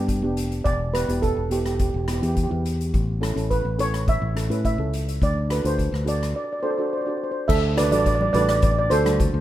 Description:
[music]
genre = calypso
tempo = 105 BPM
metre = 4/4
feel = straight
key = unclear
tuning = A4 = 439 Hz
[part]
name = steel pan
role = melody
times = 0.0-9.4 s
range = G4 to E5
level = -24 LUFS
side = right 2 dB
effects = ping-pong delay
[part]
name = steel pan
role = accompaniment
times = 0.0-9.4 s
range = B3 to B4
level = -29 LUFS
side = right 1 dB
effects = none
[part]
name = fingered electric bass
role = bass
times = 0.0-9.4 s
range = E1 to A2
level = -24 LUFS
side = equal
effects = none
[part]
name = street-band drum kit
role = drums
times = 0.1-9.3 s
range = crash cymbal, hi-hat, kick drum, rim click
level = -27 LUFS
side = left 1 dB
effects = none
[part]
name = congas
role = percussion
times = 7.8-9.3 s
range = none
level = -29 LUFS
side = right 1 dB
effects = none
[sound]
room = small room ambience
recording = rough home demo mix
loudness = -20 LUFS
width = side -13 dB against mid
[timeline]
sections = 0.0-7.5 A section; 7.5-9.4 B section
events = break 6.4-7.5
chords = 0.0 G; 0.6 Em; 2.9 A; 5.2 D

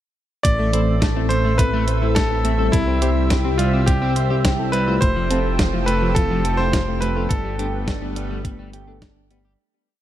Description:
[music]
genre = synthwave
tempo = 105 BPM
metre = 4/4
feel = straight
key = A minor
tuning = A4 = 440 Hz
[part]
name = bright electric grand piano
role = melody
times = 0.4-9.0 s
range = E4 to D5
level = -24 LUFS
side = equal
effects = digital delay
[part]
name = lush unison pad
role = sustained chords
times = 0.4-9.6 s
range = F3 to E5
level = -28 LUFS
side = right 1 dB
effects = chorus, sidechain pumping
[part]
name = clean electric guitar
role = arpeggios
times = 0.4-9.6 s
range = G3 to C5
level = -30 LUFS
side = right 4 dB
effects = spring reverb, ping-pong delay
[part]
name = chorused synth bass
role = bass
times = 0.4-9.6 s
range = F1 to C2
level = -22 LUFS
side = equal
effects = sidechain pumping
[part]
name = clean 12-bit digital drum machine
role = drums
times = 0.4-9.4 s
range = hi-hat, snare drum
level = -26 LUFS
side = equal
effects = none
[part]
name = electronic kick drum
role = drums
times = 0.4-9.1 s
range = none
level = -20 LUFS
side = equal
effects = none
[part]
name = electric guitar at the edge of break-up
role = riff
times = 0.6-9.5 s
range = F3 to C5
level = -29 LUFS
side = left 2 dB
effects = analog chorus, ping-pong delay
[part]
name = mellow FM electric piano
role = stabs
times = 0.7-9.4 s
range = G3 to B4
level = -28 LUFS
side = left 4 dB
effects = chorus, phaser
[sound]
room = light reverb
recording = dark, warm production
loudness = -17 LUFS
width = side -12 dB against mid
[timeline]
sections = 0.4-9.6 verse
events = fade-out 6.5-9.6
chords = 0.4 Am; 2.7 C; 5.0 Fmaj7; 7.3 Gadd9

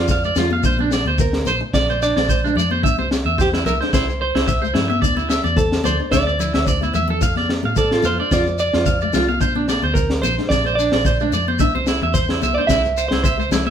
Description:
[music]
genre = highlife guitar band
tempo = 110 BPM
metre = 4/4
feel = swing 54% on 16ths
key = F major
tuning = A4 = 439 Hz
[part]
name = semi-hollow electric guitar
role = melody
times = 0.0-13.6 s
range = G4 to E5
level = -22 LUFS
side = right 2 dB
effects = none
[part]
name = flamenco guitar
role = accompaniment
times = 0.0-13.7 s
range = A3 to D4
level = -28 LUFS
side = left 3 dB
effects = none
[part]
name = electric guitar at the edge of break-up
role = arpeggios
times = 0.0-13.7 s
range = D4 to F5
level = -21 LUFS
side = right 3 dB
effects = none
[part]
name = vintage muted fingered electric bass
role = bass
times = 0.0-13.7 s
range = Bb1 to A2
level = -24 LUFS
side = equal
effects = none
[part]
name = crunchy breakbeat drum kit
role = drums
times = 0.1-13.7 s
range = kick drum, snare drum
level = -21 LUFS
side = equal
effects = none
[part]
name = shekere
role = percussion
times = 0.1-13.7 s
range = none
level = -28 LUFS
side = left 6 dB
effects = none
[part]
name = congas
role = percussion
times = 0.4-13.7 s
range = none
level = -26 LUFS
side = left 4 dB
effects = none
[sound]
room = wet studio reverb, RT60 0.8 s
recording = band playing live in one room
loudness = -16 LUFS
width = side -8 dB against mid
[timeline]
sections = 0.0-13.7 A section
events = drum fill 6.8-7.2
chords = 0.0 F6; 0.6 Bbadd9; 2.8 C; 5.0 Dsus2; 7.2 F6; 9.4 Bbadd9; 11.6 C

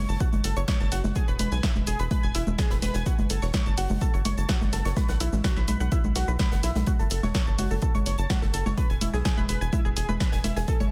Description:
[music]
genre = melodic techno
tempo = 126 BPM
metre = 4/4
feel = straight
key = F# minor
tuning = A4 = 444 Hz
[part]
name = tight sequenced synth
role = arpeggios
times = 0.0-10.8 s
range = E4 to A6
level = -35 LUFS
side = equal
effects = chorus, phaser, sidechain pumping, tape echo
[part]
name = tight sequencer bass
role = bass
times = 0.0-10.9 s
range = E1 to B1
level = -30 LUFS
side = equal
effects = sidechain pumping
[part]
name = punchy analog drum machine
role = drums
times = 0.1-10.9 s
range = congas, hi-hat, shaker, snare drum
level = -33 LUFS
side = equal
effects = none
[part]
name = big rock drum kit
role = drums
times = 0.2-10.9 s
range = hi-hat, snare drum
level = -44 LUFS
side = equal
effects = none
[part]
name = electronic kick drum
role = drums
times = 0.2-10.8 s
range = none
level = -29 LUFS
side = equal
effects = none
[sound]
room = digital ambience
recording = dense, heavily limited modern master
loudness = -25 LUFS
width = mono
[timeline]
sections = 0.0-10.9 A section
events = none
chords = 0.0 F#m; 1.2 E; 3.1 F#m; 5.0 Bsus4; 6.9 F#m; 8.8 E

